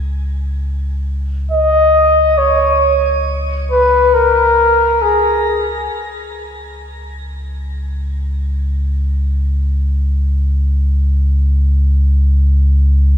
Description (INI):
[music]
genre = ambient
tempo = free time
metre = none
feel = none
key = unclear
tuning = A4 = 440 Hz
[part]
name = warm sub bass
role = bass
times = 0.0-13.2 s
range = C#2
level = -15 LUFS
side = equal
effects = none
[part]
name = mellow flugelhorn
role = melody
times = 1.5-5.7 s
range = G#4 to D#5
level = -12 LUFS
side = left 1 dB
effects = shimmer reverb, tape echo
[sound]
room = moderate lush hall reverb, RT60 2.8 s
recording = small room ambience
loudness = -12 LUFS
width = side -9 dB against mid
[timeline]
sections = 0.0-13.2 A section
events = fade-in on sub bass 0.0-13.2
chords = 0.0 C#5